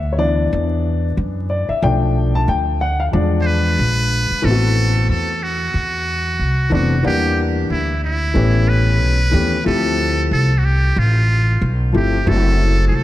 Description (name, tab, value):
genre	hip hop, jazz-hop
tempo	92 BPM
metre	4/4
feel	swing 58% on 16ths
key	A dorian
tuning	A4 = 441 Hz
part	dark concert grand piano	accompaniment	0.0-13.0 s	E3 to A5	-20 LUFS	left 3 dB	none
part	upright bass	bass	0.0-13.0 s	F1 to F#2	-17 LUFS	equal	none
part	trumpet with metal mute	melody	3.4-13.0 s	E4 to C5	-21 LUFS	right 2 dB	tape echo
room	light reverb, studio reverb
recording	vinyl crackle, lossy compression artefacts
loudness	-15 LUFS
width	side -14 dB against mid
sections	0.0-4.4 A section; 4.4-13.0 B section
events	grand piano solo 0.0-4.4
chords	0.0 Cmaj9 (rootless); 1.8 Bm7b5; 3.1 E7b9; 4.4 Am69; 7.0 Em7b5; 8.3 A7; 9.7 Dm11; 12.3 F#m7b5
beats	0.52 1.17 | 1.83 2.48 3.13 3.78 | 4.43 5.09 5.74 6.39 | 7.04 7.70 8.35 9.00 | 9.65 10.30 10.96 11.61 | 12.26 12.91